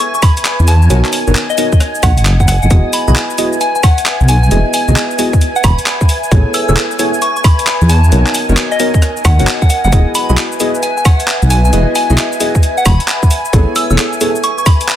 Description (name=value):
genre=UK garage, two-step garage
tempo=133 BPM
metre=4/4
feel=swing 65% on 16ths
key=E major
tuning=A4 = 441 Hz
part: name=soft synth bell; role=melody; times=0.0-15.0 s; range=D#5 to E6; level=-18 LUFS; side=left 1 dB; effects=chorus, phaser
part: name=soft string machine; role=sustained chords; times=0.0-15.0 s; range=G#5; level=-24 LUFS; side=equal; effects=ensemble chorus, sidechain pumping
part: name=breakbeat sampler-style drum kit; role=drums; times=0.0-15.0 s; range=handclaps, hi-hat, rim click, shaker, woodblock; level=-18 LUFS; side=equal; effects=studio ambience
part: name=airy breathy pad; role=texture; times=0.0-15.0 s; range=A#4 to G#5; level=-23 LUFS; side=right 2 dB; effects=chorus, sidechain pumping
part: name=electronic kick drum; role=drums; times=0.2-14.8 s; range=none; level=-10 LUFS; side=equal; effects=studio ambience
part: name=deep soft wobble bass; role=bass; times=0.6-14.0 s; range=E1 to E2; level=-10 LUFS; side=equal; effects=chorus
part: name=deep mellow chord stab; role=stabs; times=0.9-14.3 s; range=B3 to D#5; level=-18 LUFS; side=equal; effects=chorus
room=light reverb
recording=dense, heavily limited modern master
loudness=-9 LUFS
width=side -11 dB against mid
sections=0.0-15.0 A section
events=none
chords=0.0 Amaj7sus2; 0.9 Bmaj9; 2.7 Emaj9; 6.3 Amaj9; 8.1 Bmaj9; 9.9 Emaj9; 13.5 Amaj9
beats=0.00 0.45 | 0.90 1.35 1.80 2.25 | 2.71 3.16 3.61 4.06 | 4.51 4.96 5.41 5.86 | 6.32 6.77 7.22 7.67 | 8.12 8.57 9.02 9.47 | 9.92 10.38 10.83 11.28 | 11.73 12.18 12.63 13.08 | 13.53 13.98 14.44 14.89